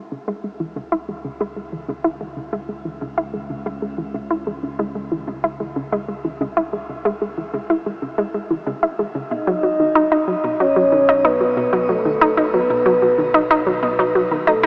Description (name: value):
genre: ambient, sequencer-driven space music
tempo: 93 BPM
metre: 4/4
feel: straight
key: C# minor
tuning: A4 = 440 Hz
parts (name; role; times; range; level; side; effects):
- analog pluck; riff; 0.0-14.7 s; B2 to E4; -22 LUFS; equal; chorus, shimmer reverb, analog delay
- analog drone; bass; 0.8-14.7 s; B1 to C#2; -40 LUFS; equal; chorus
- soft octave-layered synth lead; melody; 9.3-14.7 s; A4 to D#5; -20 LUFS; equal; chorus, tremolo, shimmer reverb, analog delay
room: wet huge ambient reverb, RT60 7.8 s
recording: small speaker sound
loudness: -20 LUFS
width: mono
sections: 0.0-14.7 A section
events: filter sweep on synth arpeggio sound 0.0-14.7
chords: 0.0 C#m; 9.3 B7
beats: 0.28 0.92 | 1.57 2.21 2.86 3.50 | 4.15 4.79 5.44 6.08 | 6.73 7.38 8.02 8.67 | 9.31 9.96 10.60 11.25 | 11.89 12.54 13.18 13.83 | 14.47